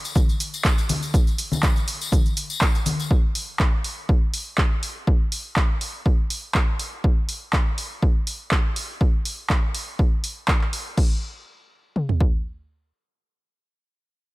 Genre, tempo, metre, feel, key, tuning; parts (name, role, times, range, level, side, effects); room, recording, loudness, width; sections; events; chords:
house; 122 BPM; 4/4; swing 54% on 16ths
punchy analog drum machine; drums; 0.0-11.1 s; crash cymbal, handclaps, hi-hat, shaker; -27 LUFS; right 1 dB
tambourine and congas; percussion; 0.0-3.1 s; -28 LUFS; left 3 dB
punchy analog drum machine; drums; 0.2-12.3 s; kick drum, toms; -20 LUFS; equal
digital ambience; -20 LUFS; side -21 dB against mid
0.0-11.0 A section; 11.0-14.3 B section